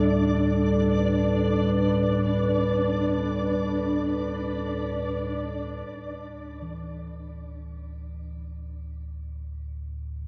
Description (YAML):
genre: dark ambient drone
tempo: free time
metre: none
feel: none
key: unclear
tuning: A4 = 440 Hz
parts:
  - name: dark analog pad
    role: sustained chords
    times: 0.0-5.9 s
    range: G3 to B4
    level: -28 LUFS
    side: equal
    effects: chorus, shimmer reverb
  - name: gamelan-type bossed gongs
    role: arpeggios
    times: 0.0-10.3 s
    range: F2 to E3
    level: -49 LUFS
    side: equal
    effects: diffuse ambient delay
  - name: deep rumbling drone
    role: drone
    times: 0.0-10.3 s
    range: D2 to A2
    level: -33 LUFS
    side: equal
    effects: built-in reverb
  - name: flickering grainy texture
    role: texture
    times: 0.0-5.9 s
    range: D4 to D5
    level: -31 LUFS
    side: equal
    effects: built-in reverb, shimmer reverb
room: wet cathedral reverb, RT60 5.7 s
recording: worn, warbling old tape, cassette tape, warbly pitch drift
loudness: -25 LUFS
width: mono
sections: 0.0-5.9 A section; 5.9-10.3 B section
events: none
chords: 0.0 G; 5.9 D5